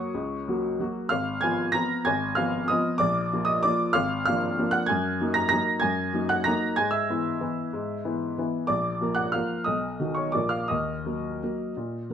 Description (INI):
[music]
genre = classical, piano waltz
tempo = 163-198 BPM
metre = 3/4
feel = rubato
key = Eb minor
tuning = A4 = 440 Hz
[part]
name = warm upright piano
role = solo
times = 0.0-12.1 s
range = Ab1 to Bb6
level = -24 LUFS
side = equal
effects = none
[sound]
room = little or no reverb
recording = close, detailed microphones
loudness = -24 LUFS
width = side -8 dB against mid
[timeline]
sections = 0.0-12.1 A section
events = none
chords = 0.0 Gb; 1.1 Fdim/Ab; 3.0 Bb; 4.0 Bb7/Ab; 4.9 Ebm/Gb; 6.8 E/G#; 8.7 Bb; 9.7 B; 10.3 Bb; 10.7 Ebm